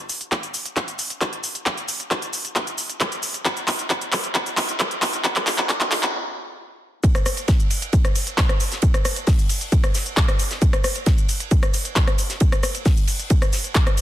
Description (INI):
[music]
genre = techno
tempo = 134 BPM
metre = 4/4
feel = straight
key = none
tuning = none
[part]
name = techno drum kit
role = drums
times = 0.1-14.0 s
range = handclaps, hi-hat, rim click, shaker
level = -23 LUFS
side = equal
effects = soft clipping on snare
[part]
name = electronic kick drum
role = drums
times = 0.3-13.8 s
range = none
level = -19 LUFS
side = equal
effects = high-pass filter on kick, high-pass filter on room
[part]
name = damped 70s drum kit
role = drums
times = 7.0-14.0 s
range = hi-hat, ride cymbal, snare drum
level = -32 LUFS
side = right 3 dB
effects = high-pass filter on cymbals, high-pass filter on hats, high-pass filter on snare, high-pass filter on room
[sound]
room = light reverb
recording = dense, heavily limited modern master, high-pass filter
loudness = -19 LUFS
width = side -13 dB against mid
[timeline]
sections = 0.0-7.0 A section; 7.0-14.0 B section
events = build-up 0.0-7.0; drum fill 0.0-6.1; stop 6.1-7.0; drop 7.0-14.0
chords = none